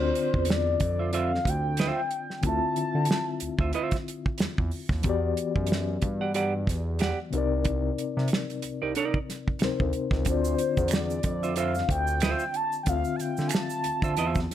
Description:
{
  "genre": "R&B, neo-soul",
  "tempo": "92 BPM",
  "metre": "4/4",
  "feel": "swing 56% on 16ths",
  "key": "unclear",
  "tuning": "A4 = 442 Hz",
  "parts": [
    { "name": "mellow horn-like synth lead", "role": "melody", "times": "0.0-3.7, 10.3-14.5 s", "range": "C5 to A5", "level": "-29 LUFS", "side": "left 1 dB", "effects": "chorus, phaser" },
    { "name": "mellow reed electric piano", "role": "accompaniment", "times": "0.0-14.5 s", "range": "C3 to F5", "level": "-31 LUFS", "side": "left 7 dB", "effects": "fast tremolo" },
    { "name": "smooth synth bass", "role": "bass", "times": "0.0-14.5 s", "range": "C2 to D3", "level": "-30 LUFS", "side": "right 1 dB", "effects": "none" },
    { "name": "damped 70s drum kit", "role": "drums", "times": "0.2-14.5 s", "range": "hi-hat, kick drum, snare drum", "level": "-28 LUFS", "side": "right 1 dB", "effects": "none" },
    { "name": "semi-hollow electric guitar", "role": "second line", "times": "1.0-14.4 s", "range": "Eb4 to F#5", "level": "-29 LUFS", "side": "right 6 dB", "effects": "none" },
    { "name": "egg shaker and finger snaps", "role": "percussion", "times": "10.3-14.5 s", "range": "none", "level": "-39 LUFS", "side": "right 10 dB", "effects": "none" }
  ],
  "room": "moderate studio reverb, RT60 0.8 s",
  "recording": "none",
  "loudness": "-25 LUFS",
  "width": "side -11 dB against mid",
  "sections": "0.0-14.5 A section",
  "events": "none",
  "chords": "0.0 Dm9; 5.0 Em9; 7.3 Cm9; 10.3 Dm9",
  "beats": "0.48 1.13 1.78 | 2.43 3.08 3.74 4.39 | 5.04 5.69 6.35 7.00 | 7.65 8.30 8.96 9.61 | 10.26 10.91 11.56 12.22 | 12.87 13.52 14.17"
}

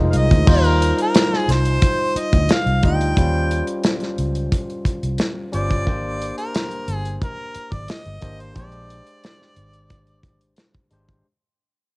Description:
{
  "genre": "lush 1970s-style soul",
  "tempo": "89 BPM",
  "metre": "4/4",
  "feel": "straight",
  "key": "Eb major",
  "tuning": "A4 = 441 Hz",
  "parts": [
    { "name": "overdriven tine electric piano", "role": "accompaniment", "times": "0.0-11.3 s", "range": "G3 to Eb5", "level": "-25 LUFS", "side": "left 1 dB", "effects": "cassette tape" },
    { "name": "vintage muted fingered electric bass", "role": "bass", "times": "0.0-11.2 s", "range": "F1 to Eb2", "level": "-20 LUFS", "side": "equal", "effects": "none" },
    { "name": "warm harmonica", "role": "melody", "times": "0.1-10.5 s", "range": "Bb4 to G5", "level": "-24 LUFS", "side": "equal", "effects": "cassette tape" },
    { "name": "modern studio drum kit", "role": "drums", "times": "0.1-11.2 s", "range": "crash cymbal, hi-hat, kick drum, snare drum", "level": "-19 LUFS", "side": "equal", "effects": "none" }
  ],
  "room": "little or no reverb",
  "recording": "home recording on cassette",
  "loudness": "-17 LUFS",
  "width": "side -27 dB against mid",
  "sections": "0.5-11.3 A section",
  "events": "fade-out 0.5-11.3",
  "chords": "0.5 Eb69; 3.2 Eb13; 5.9 Abmaj9#11; 8.6 Bb13",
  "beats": "| 0.47 1.15 1.82 2.50 | 3.17 3.84 4.52 5.19 | 5.86 6.54 7.21 7.89 | 8.56 9.23 9.91 10.58"
}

